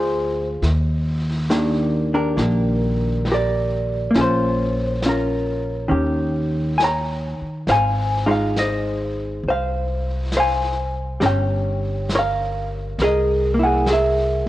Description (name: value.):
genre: jazz ballad.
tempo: 68 BPM.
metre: 4/4.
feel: swing 68% on 8ths.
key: unclear.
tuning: A4 = 438 Hz.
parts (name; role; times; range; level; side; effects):
vintage hollow-body jazz guitar; accompaniment; 0.0-14.5 s; Eb3 to Bb5; -20 LUFS; equal; cassette tape.
upright bass; bass; 0.0-14.5 s; G1 to Eb2; -23 LUFS; equal; none.
vintage brush drum kit; drums; 0.6-14.5 s; brushed snare drum, hi-hat, snare drum; -31 LUFS; equal; cassette tape.
room: light reverb, small room ambience.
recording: home recording on cassette.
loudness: -18 LUFS.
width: side -15 dB against mid.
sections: 0.0-14.5 A section.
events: none.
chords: 0.0 Bb9 (rootless); 0.6 Ebmaj7; 4.1 Bbmadd9; 5.9 Eb7; 7.7 Ab6; 11.2 Gm7b5; 13.0 Caug7.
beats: | 0.62 1.50 2.38 3.27 | 4.15 5.03 5.91 6.79 | 7.68 8.56 9.44 10.33 | 11.21 12.09 12.97 13.86.